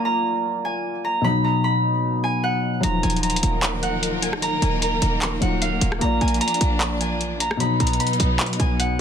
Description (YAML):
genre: hip hop, trap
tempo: 151 BPM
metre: 4/4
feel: half-time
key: Eb harmonic minor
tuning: A4 = 437 Hz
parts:
  - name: Celtic harp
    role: melody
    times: 0.0-9.0 s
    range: F5 to B5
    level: -24 LUFS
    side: right 2 dB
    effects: digital delay
  - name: felt-muted upright piano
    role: accompaniment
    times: 0.0-9.0 s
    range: B2 to D5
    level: -25 LUFS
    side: left 2 dB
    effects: none
  - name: warm symphonic string section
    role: sustained chords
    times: 2.8-9.0 s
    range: Eb3 to Bb4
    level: -28 LUFS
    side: equal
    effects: none
  - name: short 808-style bass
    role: bass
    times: 2.8-9.0 s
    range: Eb1 to B1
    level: -24 LUFS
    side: right 1 dB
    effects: none
  - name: booming analog drum machine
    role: drums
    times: 2.8-8.9 s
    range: handclaps, hi-hat, rim click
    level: -25 LUFS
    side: equal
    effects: vintage 12-bit sampler grit
room: small room ambience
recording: dense, heavily limited modern master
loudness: -19 LUFS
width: side -8 dB against mid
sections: 0.0-9.0 A section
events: none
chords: 0.0 Bb; 1.2 B; 2.8 Ebmadd9; 6.0 Bb; 7.6 B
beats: 0.05 0.45 0.85 | 1.25 1.64 2.04 2.44 | 2.83 3.23 3.63 4.03 | 4.42 4.82 5.22 5.62 | 6.01 6.41 6.81 7.21 | 7.60 8.00 8.40 8.79